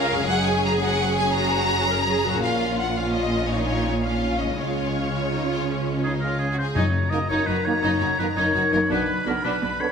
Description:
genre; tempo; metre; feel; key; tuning
cinematic; 112 BPM (dotted quarters); 12/8; straight; Db major, F# major from 6.8 s; A4 = 441 Hz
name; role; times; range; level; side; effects
warm symphonic violin section; melody; 0.0-9.9 s; Db5 to B5; -27 LUFS; left 2 dB; none
clear symphonic violin section; second line; 0.0-9.7 s; B3 to A#4; -29 LUFS; left 2 dB; none
rich symphonic viola section; accompaniment; 0.0-9.7 s; Db4 to Bb4; -29 LUFS; right 2 dB; none
concert harp; arpeggios; 0.0-9.9 s; Gb2 to Db5; -30 LUFS; left 6 dB; none
dark symphonic cello section; bass; 0.0-9.7 s; Gb2 to Db3; -29 LUFS; right 2 dB; none
rich symphonic double bass section; bass; 0.0-9.7 s; Gb1 to Db2; -29 LUFS; right 2 dB; none
clear oboe; second line; 6.0-9.9 s; Ab4 to D#5; -25 LUFS; equal; none
timpani; percussion; 6.8-7.3 s; F#2; -26 LUFS; left 2 dB; none
warm trombone section; sustained chords; 7.1-9.9 s; D3 to B3; -30 LUFS; right 4 dB; none
room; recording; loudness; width
wet scoring stage reverb, RT60 1.9 s; none; -20 LUFS; side -6 dB against mid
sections
0.0-6.8 A section; 6.8-9.9 B section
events
none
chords
0.3 Gbadd9; 2.4 Bbm; 4.6 Db; 6.8 F#6; 8.9 Bm

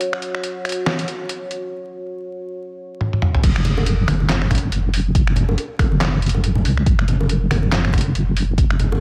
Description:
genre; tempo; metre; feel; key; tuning
deep dubstep; 140 BPM; 4/4; swing 58% on 16ths, half-time; unclear; A4 = 435 Hz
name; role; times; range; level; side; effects
dark analog pad; sustained chords; 0.0-3.5 s; F#4 to C#5; -30 LUFS; equal; chorus
trip hop sampler-style drum kit; drums; 0.0-8.9 s; crash cymbal, finger snaps, handclaps, hi-hat, snare drum, toms; -25 LUFS; equal; none
deep soft wobble bass; bass; 3.4-9.0 s; F#1 to C#2; -21 LUFS; equal; chorus, tube saturation
electronic kick drum; drums; 3.4-8.7 s; none; -21 LUFS; equal; none
congas and bongos; percussion; 3.6-9.0 s; none; -27 LUFS; equal; none
room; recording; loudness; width
digital ambience; vinyl crackle; -19 LUFS; mono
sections
0.0-3.4 A section; 3.4-9.0 B section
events
build-up 0.0-3.4; drum fill 3.0-3.4; drop 3.4-9.0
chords
0.0 F#5

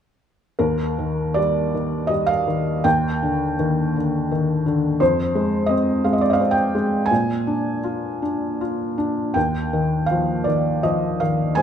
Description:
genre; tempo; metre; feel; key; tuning
classical, lyrical solo piano; 78-88 BPM; 3/4; rubato; Eb major; A4 = 440 Hz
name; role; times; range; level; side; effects
felt-muted upright piano; solo; 0.6-11.6 s; Eb2 to Ab5; -18 LUFS; equal; none
room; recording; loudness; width
moderate recital hall reverb, RT60 1.5 s; minimal, uncompressed stereo recording; -18 LUFS; side -8 dB against mid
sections
0.6-11.6 A section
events
none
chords
0.6 Eb; 2.9 Ebmaj7; 5.0 Fm; 7.1 Bb; 9.4 Ebsus2

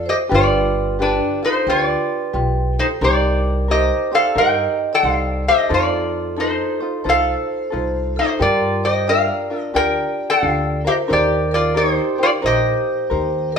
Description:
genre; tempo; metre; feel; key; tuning
Hawaiian; 89 BPM; 4/4; swing 64% on 8ths; unclear; A4 = 440 Hz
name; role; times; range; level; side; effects
metal-body resonator slide guitar; melody; 0.0-13.6 s; D4 to G5; -18 LUFS; left 1 dB; none
vibraphone with soft mallets; second line; 0.0-13.6 s; G4 to Eb5; -24 LUFS; right 3 dB; none
ukulele; accompaniment; 0.0-13.6 s; D4 to D5; -24 LUFS; left 3 dB; none
upright bass; bass; 0.0-13.5 s; G1 to G2; -23 LUFS; right 1 dB; none
room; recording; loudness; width
moderate large studio reverb, RT60 1.2 s; band playing live in one room; -16 LUFS; side -6 dB against mid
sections
0.0-13.6 A section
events
none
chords
0.3 G7; 3.0 Cm7; 5.7 F7; 8.4 Gm7; 11.1 Eb6

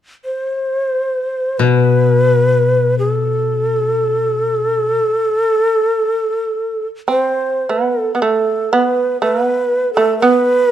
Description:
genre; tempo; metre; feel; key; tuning
japanese traditional, Japanese chamber music; free time; none; none; unclear; A4 = 440 Hz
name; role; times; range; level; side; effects
breathy mellow shakuhachi; melody; 0.2-10.7 s; A4 to C5; -15 LUFS; right 1 dB; none
koto; accompaniment; 1.6-5.0 s; B2; -16 LUFS; left 6 dB; none
shamisen; second line; 7.1-10.7 s; A3 to C4; -17 LUFS; right 3 dB; none
room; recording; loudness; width
light reverb; dark, warm production; -13 LUFS; side -10 dB against mid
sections
0.0-8.2 A section; 8.2-10.7 B section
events
none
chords
none

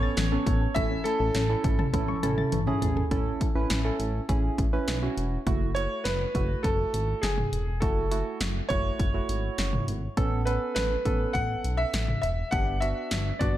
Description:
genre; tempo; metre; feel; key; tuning
synth-pop; 102 BPM; 4/4; straight; A major; A4 = 441 Hz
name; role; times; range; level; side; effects
clear concert grand piano; melody; 0.0-2.2, 5.7-13.6 s; G#4 to F#5; -30 LUFS; right 1 dB; digital delay
soft electric-piano-like synth keys; accompaniment; 0.0-13.6 s; A3 to B4; -32 LUFS; right 4 dB; chorus
soft round pluck; arpeggios; 0.0-3.1 s; E3 to A6; -34 LUFS; left 9 dB; chorus, digital delay
chorused synth bass; bass; 0.0-13.6 s; E1 to B1; -30 LUFS; equal; none
punchy analog drum machine; drums; 0.2-13.5 s; hi-hat, kick drum, snare drum, toms; -29 LUFS; equal; none
room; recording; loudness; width
light reverb; dark, warm production; -24 LUFS; side -13 dB against mid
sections
0.0-3.1 A section; 3.1-5.5 B section; 5.5-13.6 C section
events
drum fill 1.9-3.1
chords
0.0 Aadd9; 0.8 A; 5.5 F#m7; 10.2 Aadd9; 12.5 G

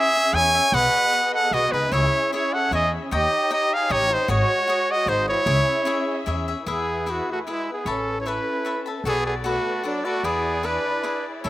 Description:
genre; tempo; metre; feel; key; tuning
mexican folk, mariachi; 151 BPM; 3/4; straight; C# minor, E major from 6.7 s; A4 = 439 Hz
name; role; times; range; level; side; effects
bright trumpet; melody; 0.0-11.5 s; D4 to G#5; -21 LUFS; equal; slapback echo
mellow trumpet; second line; 0.0-11.5 s; F#3 to C#5; -29 LUFS; right 5 dB; slapback echo
cavaquinho; accompaniment; 0.0-11.5 s; E4 to B5; -30 LUFS; left 4 dB; slapback echo
warm studio violin section; sustained chords; 0.0-11.5 s; G#3 to E5; -31 LUFS; left 1 dB; none
upright bass; bass; 0.3-11.5 s; G#1 to E2; -27 LUFS; equal; none
room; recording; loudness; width
little or no reverb; recorded outdoors, with no room sound; -20 LUFS; side -15 dB against mid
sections
0.0-6.7 A section; 6.7-11.5 B section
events
none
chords
0.0 C#m; 0.7 B6; 1.9 C#m; 3.1 D#7; 4.3 G#7sus4; 5.1 G#7; 5.5 C#m; 6.7 E; 7.9 Aadd9; 9.0 Bm7; 10.2 E7

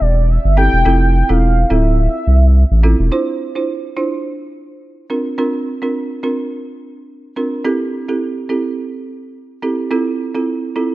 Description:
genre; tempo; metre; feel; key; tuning
afrobeats; 106 BPM; 4/4; swing 55% on 16ths; F major; A4 = 440 Hz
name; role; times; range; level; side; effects
warm velvety synth lead; melody; 0.0-2.8 s; D5 to G5; -19 LUFS; equal; chorus
saturated sub bass; bass; 0.0-3.1 s; D1 to C2; -12 LUFS; equal; none
folk marimba with medium mallets; accompaniment; 0.6-10.9 s; C4 to C5; -19 LUFS; right 3 dB; none
room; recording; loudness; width
light reverb, small room reverb; dark, warm production; -14 LUFS; side -17 dB against mid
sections
0.0-3.1 A section; 3.1-10.9 B section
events
none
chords
0.0 Am7; 0.9 Fmaj7; 3.1 Dm9; 5.1 C9sus4; 7.6 Am7; 9.9 Fmaj7

